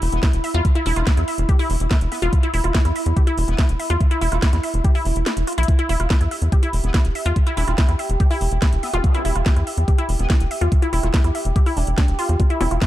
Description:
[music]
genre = psychedelic trance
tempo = 143 BPM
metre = 4/4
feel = straight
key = E phrygian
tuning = A4 = 440 Hz
[part]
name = overtone-sweeping drone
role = sustained chords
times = 0.0-12.9 s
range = E4 to G4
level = -29 LUFS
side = right 2 dB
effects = chorus, built-in reverb, sidechain pumping
[part]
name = tight sequencer bass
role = bass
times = 0.0-12.8 s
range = E1 to E2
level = -20 LUFS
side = equal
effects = none
[part]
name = garage drum kit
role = drums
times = 0.0-12.9 s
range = bongos, hi-hat, snare drum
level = -28 LUFS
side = equal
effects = none
[part]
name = metallic wobble bass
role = second line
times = 0.1-11.2 s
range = A3 to D4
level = -37 LUFS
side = left 4 dB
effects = none
[part]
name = wide unison pluck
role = riff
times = 0.2-12.9 s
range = D4 to E5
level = -25 LUFS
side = equal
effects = auto-pan, sidechain pumping, ping-pong delay
[part]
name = electronic kick drum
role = drums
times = 0.2-12.9 s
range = none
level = -17 LUFS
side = equal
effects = none
[part]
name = zap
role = sound effects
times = 8.9-9.0 s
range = none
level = -33 LUFS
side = equal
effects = none
[sound]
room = little or no reverb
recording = dark, warm production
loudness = -17 LUFS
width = side -14 dB against mid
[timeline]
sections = 0.0-12.9 A section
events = filter sweep on synth arpeggio sound 0.0-12.9; break 5.3-5.7; drum fill 5.5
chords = 0.0 E5

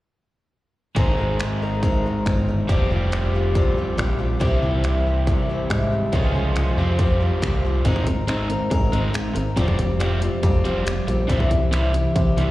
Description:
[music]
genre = folk rock and heartland rock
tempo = 140 BPM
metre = 4/4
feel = straight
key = F minor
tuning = A4 = 440 Hz
[part]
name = picked acoustic archtop guitar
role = accompaniment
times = 1.0-12.5 s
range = F2 to Bb4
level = -27 LUFS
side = left 2 dB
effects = slapback echo
[part]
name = overdriven electric guitar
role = riff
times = 1.0-12.5 s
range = Ab2 to Ab4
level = -25 LUFS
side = right 1 dB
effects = slapback echo
[part]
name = picked electric bass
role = bass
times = 1.0-12.5 s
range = F1 to C3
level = -22 LUFS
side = equal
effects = none
[part]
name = dubstep drum kit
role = drums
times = 1.0-12.5 s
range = finger snaps, hi-hat, kick drum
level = -24 LUFS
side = equal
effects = none
[sound]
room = light reverb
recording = live gig heard through the venue's PA, recital hall reverb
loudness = -18 LUFS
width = side -16 dB against mid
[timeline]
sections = 1.0-7.9 A section; 7.9-12.5 B section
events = none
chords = 1.0 Abadd9; 2.7 Fsus2; 4.4 C; 6.1 Db; 6.8 Fsus2; 7.9 Abadd9; 9.6 Fsus2; 11.3 C

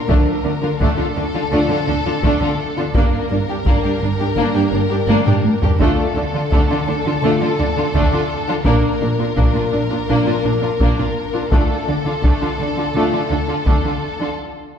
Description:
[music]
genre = cinematic, epic orchestral film score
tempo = 84 BPM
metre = 4/4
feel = straight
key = D minor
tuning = A4 = 440 Hz
[part]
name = warm symphonic violin section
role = melody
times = 0.0-14.3 s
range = A4 to Bb4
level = -24 LUFS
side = left 4 dB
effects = none
[part]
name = warm symphonic violin section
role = second line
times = 0.1-14.3 s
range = A3 to G4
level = -25 LUFS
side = left 3 dB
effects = none
[part]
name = warm symphonic viola section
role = accompaniment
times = 0.1-14.3 s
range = D4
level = -24 LUFS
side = right 2 dB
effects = none
[part]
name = mellow French horn section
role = sustained chords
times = 0.1-13.2 s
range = F3 to F4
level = -23 LUFS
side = left 2 dB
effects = none
[part]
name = rich symphonic cello section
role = bass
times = 0.1-14.3 s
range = G2 to D3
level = -23 LUFS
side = right 2 dB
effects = none
[part]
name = rich symphonic double bass section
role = bass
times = 0.1-13.7 s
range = G1 to D2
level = -24 LUFS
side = right 2 dB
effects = none
[part]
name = taiko ensemble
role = drums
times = 0.1-14.3 s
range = none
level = -18 LUFS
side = equal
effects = none
[sound]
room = wet scoring stage reverb, RT60 1.8 s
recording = heard from further back in the room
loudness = -15 LUFS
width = side -8 dB against mid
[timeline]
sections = 0.0-14.8 A section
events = drum fill 5.1-5.8; break 14.4-14.8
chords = 0.1 Dm; 3.0 Gm; 5.8 Dm; 8.7 Bb; 11.5 Dm

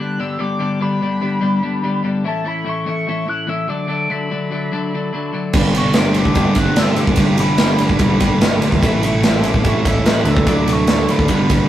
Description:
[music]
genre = indie rock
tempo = 146 BPM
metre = 4/4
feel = straight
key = G lydian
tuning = A4 = 440 Hz
[part]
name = overdriven synth lead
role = melody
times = 0.0-11.7 s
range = A5 to F#6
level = -25 LUFS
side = equal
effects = distortion, phaser
[part]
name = twelve-string electric guitar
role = riff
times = 0.0-11.7 s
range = G2 to E4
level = -20 LUFS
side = left 2 dB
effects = warbly pitch drift
[part]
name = thick fuzz guitar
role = riff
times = 5.5-11.7 s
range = G2 to G4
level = -18 LUFS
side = right 4 dB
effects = distortion
[part]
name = growling picked electric bass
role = bass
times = 5.5-11.7 s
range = E1 to A2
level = -24 LUFS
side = equal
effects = overdrive
[part]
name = big rock drum kit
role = drums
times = 5.5-11.6 s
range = crash cymbal, kick drum, ride cymbal, snare drum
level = -16 LUFS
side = equal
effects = none
[part]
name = tambourine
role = percussion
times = 5.5-11.6 s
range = none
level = -41 LUFS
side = left 2 dB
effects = none
[sound]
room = moderate studio reverb, RT60 0.5 s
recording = rough rehearsal-room recording, warm saturation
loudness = -14 LUFS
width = side -12 dB against mid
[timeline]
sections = 0.0-11.7 A section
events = none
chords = 0.0 G; 2.2 A; 3.7 D; 5.5 G; 8.8 A; 10.3 D

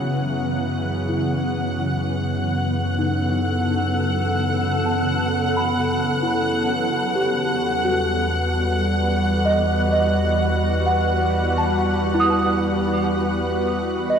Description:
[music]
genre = ambient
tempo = 64 BPM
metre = 4/4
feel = straight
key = unclear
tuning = A4 = 440 Hz
[part]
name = shimmering ambient pad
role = sustained chords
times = 0.0-14.2 s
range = C#3 to B4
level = -22 LUFS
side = equal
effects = chorus, built-in reverb
[part]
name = small celesta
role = arpeggios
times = 0.0-14.2 s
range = D#4 to D#6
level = -25 LUFS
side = right 2 dB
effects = tape echo
[part]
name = deep rumbling drone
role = bass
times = 0.3-14.2 s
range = E2 to F#2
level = -26 LUFS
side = equal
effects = built-in reverb
[part]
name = muted studio violin section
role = texture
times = 0.0-14.2 s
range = F#5 to F#6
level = -26 LUFS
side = equal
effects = none
[sound]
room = wet lush hall reverb, RT60 2.6 s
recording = none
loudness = -19 LUFS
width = side -7 dB against mid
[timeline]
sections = 0.0-14.2 A section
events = none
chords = 0.0 F#m7; 7.0 Emadd9

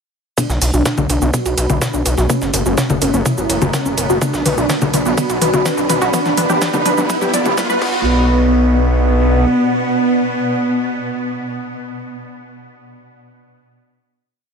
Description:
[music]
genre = melodic techno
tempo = 125 BPM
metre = 4/4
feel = straight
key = B harmonic minor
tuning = A4 = 440 Hz
[part]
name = wide unison lead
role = melody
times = 0.4-12.2 s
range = A#3 to F#4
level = -20 LUFS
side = equal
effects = sidechain pumping, ping-pong delay
[part]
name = deep dark ambient pad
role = sustained chords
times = 1.3-12.2 s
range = B3 to B5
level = -22 LUFS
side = equal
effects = chorus, built-in reverb, sidechain pumping
[part]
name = tight sequenced synth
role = arpeggios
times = 0.4-8.3 s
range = A#3 to D5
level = -21 LUFS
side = equal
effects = chorus, sidechain pumping, tape echo
[part]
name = swarming drone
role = drone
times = 2.1-12.2 s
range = B2 to B3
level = -26 LUFS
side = equal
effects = built-in reverb, sidechain pumping
[part]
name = breakbeat sampler-style drum kit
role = drums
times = 0.4-7.7 s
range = hi-hat, ride cymbal, snare drum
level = -27 LUFS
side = right 2 dB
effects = high-pass filter on cymbals, studio ambience, high-pass filter on snare, high-pass filter on hats
[part]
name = electronic kick drum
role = drums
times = 0.4-7.9 s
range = none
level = -22 LUFS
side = equal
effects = high-pass filter on kick, studio ambience
[part]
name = house drum kit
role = drums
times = 0.4-7.9 s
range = congas, crash cymbal, hi-hat, shaker, toms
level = -20 LUFS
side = left 2 dB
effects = studio ambience
[part]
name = riser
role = sound effects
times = 3.8-8.1 s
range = none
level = -26 LUFS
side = right 1 dB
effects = none
[part]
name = gritty driven synth bass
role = bass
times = 0.5-9.5 s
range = F#1 to B1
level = -18 LUFS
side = equal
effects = sidechain pumping
[sound]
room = light reverb, digital ambience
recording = high-pass filter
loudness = -13 LUFS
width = side -5 dB against mid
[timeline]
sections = 0.4-8.1 build; 8.1-11.9 final hit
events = build-up 0.4-8.1; drum fill 0.4-8.1; filter sweep on synth arpeggio sound 0.4-8.1; filter sweep on analog synth lead 0.4-8.1; riser 3.8-8.1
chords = 0.4 Bm; 2.3 F#; 4.2 Bm; 6.1 G; 7.8 Bm

